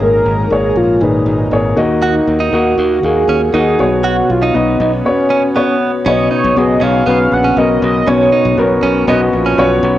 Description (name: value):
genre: pop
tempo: 119 BPM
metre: 4/4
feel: straight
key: unclear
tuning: A4 = 440 Hz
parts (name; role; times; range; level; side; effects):
- mellow horn-like synth lead; melody; 0.0-9.1 s; C#4 to F#5; -16 LUFS; right 1 dB; chorus
- dark concert grand piano; accompaniment; 0.0-10.0 s; Ab2 to Gb5; -14 LUFS; left 2 dB; cassette tape
- airy breathy pad; sustained chords; 0.0-10.0 s; Eb3 to Bb5; -26 LUFS; right 1 dB; none
- modern bright fingered electric bass; bass; 0.0-10.0 s; Ab1 to Eb2; -18 LUFS; equal; tube saturation
- direct-recorded clean electric guitar; riff; 2.0-9.7 s; B3 to Gb4; -19 LUFS; right 5 dB; cassette tape
- mellow French horn section; second line; 6.1-9.8 s; C#3 to F4; -24 LUFS; right 2 dB; none
room: light reverb, small room reverb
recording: home recording on cassette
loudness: -10 LUFS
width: side -13 dB against mid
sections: 0.0-6.1 A section; 6.1-10.0 B section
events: none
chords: 0.0 Abmadd9; 1.8 Ebm; 3.8 Bsus2